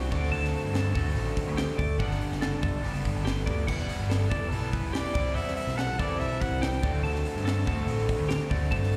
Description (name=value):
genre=math rock and midwest emo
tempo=143 BPM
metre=4/4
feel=straight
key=unclear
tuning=A4 = 439 Hz
part: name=warm trumpet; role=melody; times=0.0-0.1, 4.3-6.9 s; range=F#4 to G5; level=-37 LUFS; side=equal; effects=slapback echo
part: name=twelve-string electric guitar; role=arpeggios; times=0.0-9.0 s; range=G4 to A5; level=-39 LUFS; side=equal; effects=slapback echo
part: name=raw garage guitar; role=riff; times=0.0-9.0 s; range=G2 to F#4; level=-35 LUFS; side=equal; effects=overdrive, slapback echo
part: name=overdriven picked electric bass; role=bass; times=0.0-8.9 s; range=E1 to G2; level=-32 LUFS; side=equal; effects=none
part: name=crisp fusion drum kit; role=drums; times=0.1-9.0 s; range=crash cymbal, hi-hat, kick drum, snare drum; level=-35 LUFS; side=equal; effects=none
room=small room ambience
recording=live gig heard through the venue's PA, recital hall reverb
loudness=-28 LUFS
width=mono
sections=0.0-9.0 A section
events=none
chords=0.1 D7sus4; 2.0 Gmaj9; 3.7 Emadd9; 5.1 Cmaj9#11; 6.8 D7sus4